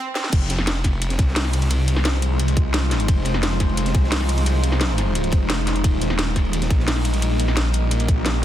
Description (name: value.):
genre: dark technical drum and bass.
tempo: 174 BPM.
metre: 4/4.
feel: straight.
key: F minor.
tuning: A4 = 440 Hz.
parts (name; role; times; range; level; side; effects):
drum and bass drum kit; drums; 0.2-8.3 s; crash cymbal, hi-hat, snare drum; -25 LUFS; equal; none.
deep dark ambient pad; sustained chords; 0.3-8.4 s; G3 to C5; -26 LUFS; equal; chorus, built-in reverb, sidechain pumping.
snarling distorted saw bass; bass; 0.3-8.4 s; Eb1 to C2; -21 LUFS; equal; distortion, overdrive, sidechain pumping.
crunchy breakbeat drum kit; drums; 0.3-8.4 s; hi-hat, ride cymbal, snare drum; -34 LUFS; equal; high-pass filter on cymbals, high-pass filter on hats, high-pass filter on snare, high-pass filter on room.
electronic kick drum; drums; 0.3-8.2 s; none; -18 LUFS; equal; none.
room: little or no reverb.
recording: dense, heavily limited modern master, high-pass filter.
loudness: -18 LUFS.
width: side -12 dB against mid.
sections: 0.3-8.4 A section.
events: break 0.0-0.3; drum fill 0.2; drop 0.3-8.4.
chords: 0.3 Fm7; 5.8 Eb.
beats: | 0.33 0.67 1.01 1.36 | 1.71 2.05 2.40 2.74 | 3.08 3.43 3.77 4.12 | 4.46 4.81 5.15 5.50 | 5.84 6.19 6.53 6.88 | 7.22 7.57 7.91 8.26.